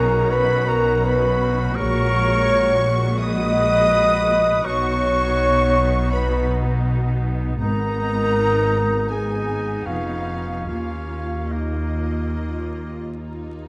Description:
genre	cinematic, emotional film score for orchestra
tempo	72-85 BPM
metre	4/4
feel	rubato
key	unclear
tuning	A4 = 441 Hz
part	rich symphonic violin section	melody	0.0-13.1 s	Eb5 to Eb6	-37 LUFS	equal	none
part	bright symphonic violin section	second line	0.0-13.7 s	Eb4 to Eb6	-36 LUFS	equal	none
part	clear oboe	second line	0.0-13.1 s	Bb3 to Cb5	-30 LUFS	equal	none
part	silver concert flute	second line	0.0-13.1 s	Eb5 to Eb6	-31 LUFS	equal	none
part	clear symphonic viola section	accompaniment	0.0-13.7 s	Ab3 to Gb4	-32 LUFS	equal	none
part	mellow French horn section	sustained chords	0.0-13.1 s	Eb4 to Eb5	-24 LUFS	equal	none
part	clear symphonic double bass section	bass	0.0-13.7 s	F1 to Eb2	-27 LUFS	equal	none
part	rich symphonic cello section	bass	0.0-13.7 s	Eb2 to B2	-29 LUFS	equal	none
room	wet scoring stage reverb, RT60 1.7 s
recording	dark, warm production, vinyl crackle, nothing above 10.9 kHz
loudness	-20 LUFS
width	mono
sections	0.0-13.7 A section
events	none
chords	0.0 Badd9; 1.8 Gbadd9/Bb; 4.6 Badd9; 7.6 Abmadd9; 10.7 Ebsus2

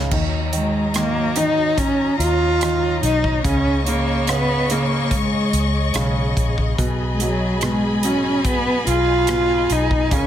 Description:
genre	pop ballad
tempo	72 BPM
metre	4/4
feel	straight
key	unclear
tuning	A4 = 440 Hz
part	clear concert grand piano	accompaniment	0.0-10.3 s	B2 to G#5	-25 LUFS	right 2 dB	none
part	warm symphonic string section	sustained chords	0.0-10.3 s	F#3 to C#6	-26 LUFS	left 2 dB	none
part	vintage muted fingered electric bass	bass	0.0-10.3 s	A#1 to D#2	-24 LUFS	equal	none
part	natural country drum kit	drums	0.1-10.3 s	crash cymbal, hi-hat, kick drum, rim click	-24 LUFS	equal	none
part	warm cello	melody	0.5-10.3 s	F#3 to E#4	-20 LUFS	equal	none
room	light reverb, small room reverb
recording	none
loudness	-17 LUFS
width	side -10 dB against mid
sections	0.1-10.3 A section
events	none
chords	0.1 D#m7; 3.4 C#sus2; 6.8 G#m7/B

